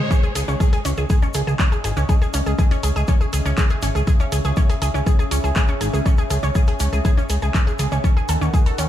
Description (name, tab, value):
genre	melodic techno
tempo	121 BPM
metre	4/4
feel	straight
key	C# minor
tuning	A4 = 440 Hz
part	dark analog pad	sustained chords	0.9-8.9 s	C#4 to F#5	-32 LUFS	left 2 dB	chorus, phaser, sidechain pumping
part	analog pluck	arpeggios	0.1-8.8 s	C#4 to A5	-26 LUFS	right 1 dB	chorus, sidechain pumping, tape echo
part	overtone-sweeping drone	drone	1.0-8.9 s	C#3 to C#4	-32 LUFS	left 2 dB	chorus, built-in reverb, phaser, sidechain pumping
part	electronic kick drum	drums	0.1-8.6 s	none	-17 LUFS	left 1 dB	high-pass filter on kick, high-pass filter on room
part	egg shaker	percussion	0.1-8.9 s	none	-36 LUFS	left 3 dB	none
part	fat analog bass	bass	0.4-8.9 s	G#1 to D#2	-20 LUFS	equal	sidechain pumping
part	techno drum kit	drums	0.4-8.9 s	handclaps, hi-hat	-28 LUFS	equal	sidechain pumping on hats, sidechain pumping on toms
room	digital ambience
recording	studio reverb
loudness	-17 LUFS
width	side -12 dB against mid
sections	0.1-8.9 A section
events	drop 0.1-8.9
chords	0.1 C#m; 8.0 D#dim